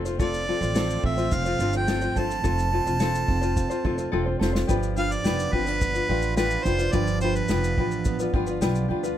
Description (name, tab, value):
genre	acoustic pop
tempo	107 BPM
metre	4/4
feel	straight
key	G mixolydian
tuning	A4 = 440 Hz
part	tenor ukulele	accompaniment	0.0-9.2 s	C4 to C5	-28 LUFS	left 6 dB	none
part	clear studio string section	sustained chords	0.0-4.6 s	F3 to C4	-38 LUFS	equal	none
part	fingerpicked plugged-in steel-string acoustic guitar	arpeggios	0.0-9.2 s	F3 to F4	-31 LUFS	right 9 dB	none
part	upright bass	bass	0.0-9.1 s	E1 to D2	-27 LUFS	equal	none
part	unplugged drum kit	drums	0.1-9.2 s	kick drum, shaker, snare drum	-29 LUFS	equal	none
part	warm harmonica	melody	0.2-8.2 s	B4 to A5	-28 LUFS	right 2 dB	none
room	little or no reverb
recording	close, detailed microphones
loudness	-22 LUFS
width	side -11 dB against mid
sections	0.0-4.7 A section; 4.7-9.2 B section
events	drum fill 4.1-4.7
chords	0.0 F; 4.7 G7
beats	| 0.20 0.76 1.32 1.88 | 2.44 3.01 3.57 4.13 | 4.69 5.25 5.82 6.38 | 6.94 7.50 8.06 8.62